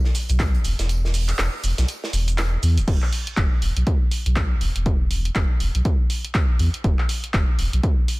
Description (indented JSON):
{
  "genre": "deep house",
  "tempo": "121 BPM",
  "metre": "4/4",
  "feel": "swing 59% on 16ths",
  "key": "unclear",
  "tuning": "A4 = 441 Hz",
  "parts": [
    { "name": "modern studio drum kit", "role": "drums", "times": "0.0-2.8 s", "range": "hi-hat, snare drum, tambourine", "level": "-33 LUFS", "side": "right 2 dB", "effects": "high-pass filter on hats, high-pass filter on snare, high-pass filter on perc, high-pass filter on room" },
    { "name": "punchy analog drum machine", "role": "drums", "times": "0.1-8.2 s", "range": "crash cymbal, handclaps, hi-hat, shaker", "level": "-28 LUFS", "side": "right 1 dB", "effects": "none" },
    { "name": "sub bass with octave", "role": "bass", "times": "0.3-7.8 s", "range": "D1 to E2", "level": "-21 LUFS", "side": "equal", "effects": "sidechain pumping" },
    { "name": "electronic kick drum", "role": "drums", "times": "0.4-8.0 s", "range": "none", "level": "-20 LUFS", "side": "equal", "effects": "none" }
  ],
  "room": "little or no reverb",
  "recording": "dense, heavily limited modern master",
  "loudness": "-19 LUFS",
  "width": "side -23 dB against mid",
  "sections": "0.0-2.9 A section; 2.9-8.2 B section",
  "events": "drop 0.0-2.9; kick drops out 0.9-2.9",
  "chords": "none"
}